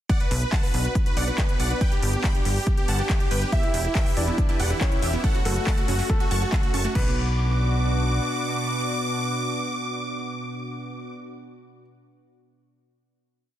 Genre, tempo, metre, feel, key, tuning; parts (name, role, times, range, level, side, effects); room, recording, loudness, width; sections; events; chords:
uplifting trance; 140 BPM; 4/4; straight; B minor; A4 = 440 Hz
supersaw chords; melody; 0.1-11.1 s; E4 to D6; -29 LUFS; equal; sidechain pumping, digital delay
lush unison pad; sustained chords; 0.5-11.1 s; B2 to B4; -31 LUFS; equal; chorus, sidechain pumping
electronic kick drum; drums; 0.1-7.0 s; -24 LUFS; equal; overdrive
techno drum kit; drums; 0.1-7.0 s; crash cymbal, handclaps, hi-hat; -32 LUFS; left 1 dB; overdrive, sidechain pumping on hats, sidechain pumping on cymbals
plucky analog bass; bass; 0.3-8.2 s; E1 to B1; -24 LUFS; equal; sidechain pumping
warm grand piano; second line; 3.5-11.8 s; A3 to E5; -33 LUFS; left 1 dB; dub echo
wide unison pluck; arpeggios; 3.5-7.2 s; A3 to G5; -35 LUFS; right 5 dB; sidechain pumping, dub echo
digital ambience; dense, heavily limited modern master; -21 LUFS; side -12 dB against mid
0.1-7.0 drop; 7.0-10.4 final chord
drop 0.1-7.0
0.1 Bm; 1.8 G; 3.5 Em; 5.2 F#m; 7.0 Bm